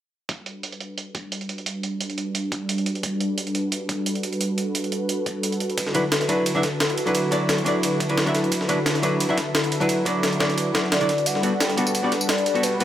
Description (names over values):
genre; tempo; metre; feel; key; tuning
liquid drum and bass; 175 BPM; 4/4; swing 53% on 16ths; unclear; A4 = 438 Hz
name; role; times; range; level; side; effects
warm analog pad; sustained chords; 0.3-12.8 s; D3 to B4; -26 LUFS; equal; chorus
electronic hi-hat and tambourine; drums; 0.3-12.8 s; none; -30 LUFS; right 4 dB; low-pass filter on hats, studio reverb, low-pass filter on perc
electronic kick drum; drums; 0.3-10.8 s; none; -34 LUFS; left 1 dB; high-pass filter on kick, studio reverb
breakbeat sampler-style drum kit; drums; 5.8-12.8 s; ride cymbal, snare drum; -25 LUFS; equal; high-pass filter on cymbals, studio reverb, high-pass filter on snare
archtop guitar, miked and amplified; accompaniment; 5.9-12.8 s; F#3 to E5; -23 LUFS; equal; low-pass filter, tape echo
hollow clarinet-like synth lead; melody; 10.9-12.8 s; B4 to G5; -25 LUFS; left 1 dB; analog chorus, tape echo
room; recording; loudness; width
moderate huge ambient reverb, RT60 5.0 s; none; -21 LUFS; side -11 dB against mid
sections
0.3-11.3 A section; 11.3-12.8 B section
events
filter sweep on analog synth pad 0.3-11.3; build-up 11.3-12.8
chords
0.3 Gmaj9; 5.8 D69; 11.3 Gmaj9